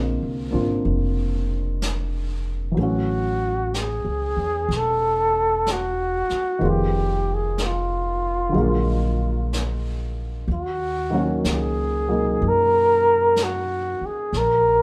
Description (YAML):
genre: jazz ballad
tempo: 62 BPM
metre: 4/4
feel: swing 67% on 8ths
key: unclear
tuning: A4 = 440 Hz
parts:
  - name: warm baby grand piano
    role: accompaniment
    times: 0.0-14.3 s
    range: D3 to F#4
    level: -29 LUFS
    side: equal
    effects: none
  - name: upright bass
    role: bass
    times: 0.0-14.8 s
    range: E1 to F#2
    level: -28 LUFS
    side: equal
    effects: none
  - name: jazz brush drum kit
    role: drums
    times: 0.9-14.8 s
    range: brushed snare drum, hi-hat, snare drum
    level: -36 LUFS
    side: equal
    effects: none
  - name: trumpet with bucket mute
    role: melody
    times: 2.9-14.8 s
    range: F4 to A#4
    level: -24 LUFS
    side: equal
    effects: none
room: moderate studio reverb, RT60 0.8 s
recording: band playing live in one room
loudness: -22 LUFS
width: mono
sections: 0.0-14.8 A section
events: none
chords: 0.0 A#9; 2.8 A6; 6.6 Fm7b5; 8.5 A#7b13; 10.5 D#m7; 14.3 N.C.